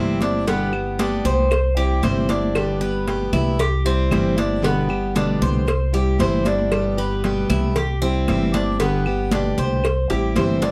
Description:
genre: latin, Cuban son and guajira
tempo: 115 BPM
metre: 4/4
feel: straight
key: G major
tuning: A4 = 440 Hz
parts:
  - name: picked plugged-in steel-string acoustic guitar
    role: accompaniment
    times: 0.0-10.7 s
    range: B2 to G4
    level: -25 LUFS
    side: equal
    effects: none
  - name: Cuban tres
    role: arpeggios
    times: 0.0-10.7 s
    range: B3 to C5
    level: -27 LUFS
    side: equal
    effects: none
  - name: upright bass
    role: bass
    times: 0.0-10.7 s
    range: G1 to C2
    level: -26 LUFS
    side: equal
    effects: none
  - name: congas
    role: percussion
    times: 0.2-10.7 s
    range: none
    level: -29 LUFS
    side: equal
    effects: none
  - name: cowbell and bongos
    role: percussion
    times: 0.2-10.7 s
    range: none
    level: -30 LUFS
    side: equal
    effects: none
  - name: claves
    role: percussion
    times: 0.7-10.1 s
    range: none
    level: -35 LUFS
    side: equal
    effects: none
room: light reverb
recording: none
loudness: -20 LUFS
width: mono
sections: 0.0-10.7 A section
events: drum fill 10.1-10.7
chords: 0.5 G; 1.5 C; 2.6 G; 3.6 C; 4.6 G; 5.7 C; 6.7 G; 7.8 C; 8.8 G; 9.8 C

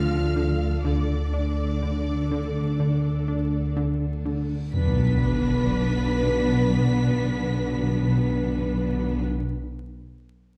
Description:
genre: cinematic, suspense film score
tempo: 62 BPM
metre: 4/4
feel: straight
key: B minor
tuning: A4 = 438 Hz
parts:
  - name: dark symphonic violin section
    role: melody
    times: 0.0-9.2 s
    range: D6 to B6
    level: -42 LUFS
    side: equal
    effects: none
  - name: rich symphonic violin section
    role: second line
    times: 0.0-9.2 s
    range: B4 to F5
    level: -41 LUFS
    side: equal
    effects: none
  - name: rich symphonic viola section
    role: accompaniment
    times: 0.0-9.2 s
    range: D4 to B4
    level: -33 LUFS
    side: equal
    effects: none
  - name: dark French horn section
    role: sustained chords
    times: 0.0-9.2 s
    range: B3 to F4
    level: -35 LUFS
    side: equal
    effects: none
  - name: plucky analog bass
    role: riff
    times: 0.0-4.5 s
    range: D3 to D4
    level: -30 LUFS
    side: equal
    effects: none
  - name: rich symphonic cello section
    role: bass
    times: 0.0-9.2 s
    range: D3 to B3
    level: -35 LUFS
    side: equal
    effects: none
  - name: rich symphonic double bass section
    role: bass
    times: 0.0-9.2 s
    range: B1 to D2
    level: -30 LUFS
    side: equal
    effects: none
  - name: reverse cymbal and sub drop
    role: sound effects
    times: 4.8-9.3 s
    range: none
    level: -31 LUFS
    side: equal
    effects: none
  - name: timpani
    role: percussion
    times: 4.7-9.3 s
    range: B2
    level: -27 LUFS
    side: equal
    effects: none
room: wet recital hall reverb, RT60 1.3 s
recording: heard from further back in the room, vinyl crackle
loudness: -24 LUFS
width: mono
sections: 0.0-4.7 A section; 4.7-8.5 B section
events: reverse cymbal 4.7; impact 4.7-8.5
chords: 0.0 Dm; 4.7 Bm

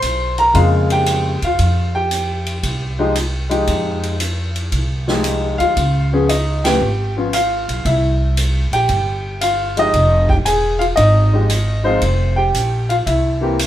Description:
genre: jazz piano trio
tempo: 115 BPM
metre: 4/4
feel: swing 68% on 8ths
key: F minor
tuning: A4 = 440 Hz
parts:
  - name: warm grand piano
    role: melody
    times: 0.0-13.7 s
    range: Db3 to C6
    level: -17 LUFS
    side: left 1 dB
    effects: none
  - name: upright bass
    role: bass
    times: 0.0-13.7 s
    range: E1 to F2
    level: -18 LUFS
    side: equal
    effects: none
  - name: swinging big-band drum kit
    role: drums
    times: 0.0-13.7 s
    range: hi-hat, kick drum, ride cymbal, snare drum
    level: -24 LUFS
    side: equal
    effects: none
room: moderate studio ambience, RT60 0.5 s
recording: band playing live in one room, faint mains hum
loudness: -14 LUFS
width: side -12 dB against mid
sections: 0.0-13.7 A section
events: band accent 6.5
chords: 0.0 Bbm9; 1.6 Fm9; 5.8 Db7; 7.8 C; 9.9 Fm9; 13.1 C7

